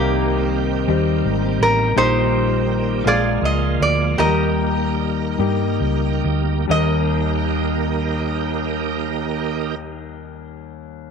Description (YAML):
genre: slow gospel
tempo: 43-56 BPM (dotted quarters)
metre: 6/8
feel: straight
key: Eb major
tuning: A4 = 440 Hz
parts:
  - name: lap resonator guitar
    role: melody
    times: 0.0-9.8 s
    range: Bb3 to Eb5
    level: -21 LUFS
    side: right 2 dB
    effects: none
  - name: warm concert grand piano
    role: accompaniment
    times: 0.0-11.1 s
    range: Eb2 to Bb4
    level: -23 LUFS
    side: left 12 dB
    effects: none
  - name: bright tonewheel organ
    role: sustained chords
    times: 0.0-9.8 s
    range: Eb3 to G4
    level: -25 LUFS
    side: right 11 dB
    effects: slow rotary speaker, chorus vibrato
  - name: hollow-body short-scale fingered electric bass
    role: bass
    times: 0.0-9.7 s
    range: Ab1 to G2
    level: -22 LUFS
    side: right 2 dB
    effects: none
room: moderate spring reverb, RT60 2.6 s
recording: 1960s-style stereo with parts hard left and right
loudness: -17 LUFS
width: side -6 dB against mid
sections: 0.0-6.7 A section; 6.7-11.1 B section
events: slowing down 2.0-6.7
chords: 0.0 Cm7; 2.0 Eb/Bb; 3.1 Bb7; 4.2 Ebmaj7; 6.7 Eb